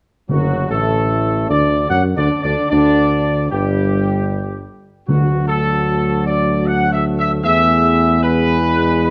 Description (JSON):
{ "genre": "classical", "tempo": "76 BPM", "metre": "3/4", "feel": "straight", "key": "D major", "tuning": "A4 = 439 Hz", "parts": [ { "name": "mellow trumpet section", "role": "melody", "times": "0.3-9.1 s", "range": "F#4 to F#5", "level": "-21 LUFS", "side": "equal", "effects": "none" }, { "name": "warm French horn section", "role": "sustained chords", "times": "0.3-9.1 s", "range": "F#3 to G#4", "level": "-24 LUFS", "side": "equal", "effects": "none" }, { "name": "warm trombone section", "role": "sustained chords", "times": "0.3-9.1 s", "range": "F#2 to A3", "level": "-25 LUFS", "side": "equal", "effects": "none" }, { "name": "mellow tuba", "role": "bass", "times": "0.3-9.1 s", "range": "F#1 to F#2", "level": "-21 LUFS", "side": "equal", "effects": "none" }, { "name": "timpani", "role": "percussion", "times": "0.3-1.5, 5.1-6.2 s", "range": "D3", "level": "-22 LUFS", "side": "equal", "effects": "none" } ], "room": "moderate recital hall reverb, RT60 1.4 s", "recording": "none", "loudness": "-16 LUFS", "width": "mono", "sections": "0.3-9.1 A section", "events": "none", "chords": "0.3 D/F#; 2.7 G5; 5.1 D; 7.4 E" }